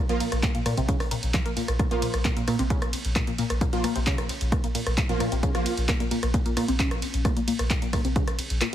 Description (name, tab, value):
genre	driving peak-time techno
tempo	132 BPM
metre	4/4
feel	straight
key	Bb minor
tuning	A4 = 441 Hz
part	tight sequenced synth	riff	0.0-8.7 s	Bb2 to Bb3	-29 LUFS	left 1 dB	chorus, phaser, cassette tape, sidechain pumping, ping-pong delay
part	rave stab	stabs	0.1-5.7 s	F3 to F4	-31 LUFS	right 2 dB	chorus, built-in reverb, sidechain pumping, ping-pong delay
part	saturated sub bass	bass	0.1-8.6 s	Bb1	-29 LUFS	equal	tube saturation, sidechain pumping, low-pass filter
part	punchy analog drum machine	drums	0.1-8.7 s	handclaps, hi-hat, ride cymbal, rim click	-30 LUFS	right 1 dB	sidechain pumping on hats, sidechain pumping on cymbals
part	electronic kick drum	drums	0.4-8.3 s	none	-26 LUFS	equal	none
room	light reverb, digital ambience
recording	heavily compressed radio sound, multiband compression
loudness	-23 LUFS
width	side -11 dB against mid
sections	0.0-8.7 A section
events	none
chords	0.0 Bb5